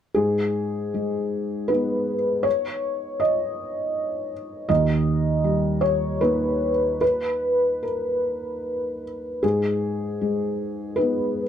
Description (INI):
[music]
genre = neoclassical minimalist piano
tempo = 74-81 BPM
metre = 3/4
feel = rubato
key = G# harmonic minor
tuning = A4 = 440 Hz
[part]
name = felt-muted upright piano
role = solo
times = 0.1-11.5 s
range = D#2 to D#5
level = -21 LUFS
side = equal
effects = none
[sound]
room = light reverb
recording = dark, warm production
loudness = -21 LUFS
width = side -9 dB against mid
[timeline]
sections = 0.2-11.5 A section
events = none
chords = 0.2 G#m; 4.7 D#; 9.4 G#m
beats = | 0.15 0.94 1.69 | 2.45 3.20 3.95 | 4.69 5.44 6.21 | 7.01 7.83 8.63 | 9.43 10.21 10.97